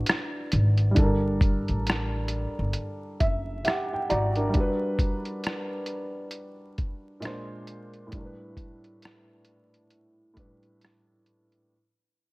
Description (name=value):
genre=lo-fi hip hop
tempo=67 BPM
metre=4/4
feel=swing 59% on 16ths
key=unclear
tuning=A4 = 440 Hz
part: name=dark upright piano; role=accompaniment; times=0.0-11.7 s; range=A2 to Bb5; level=-30 LUFS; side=right 1 dB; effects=low-pass filter
part: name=lo-fi sampler-style drum kit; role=drums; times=0.1-11.7 s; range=hi-hat, kick drum, rim click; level=-26 LUFS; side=equal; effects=vintage 12-bit sampler grit
part: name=upright bass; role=bass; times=0.5-4.5 s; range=F#1 to A1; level=-26 LUFS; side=equal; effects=none
room=light reverb, small room ambience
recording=vinyl crackle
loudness=-24 LUFS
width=side -23 dB against mid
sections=0.0-11.7 A section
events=fade-out 0.0-11.7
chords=0.0 D69; 1.0 Gmadd9; 4.5 Gmaj7; 7.2 Bb9; 8.1 A9sus4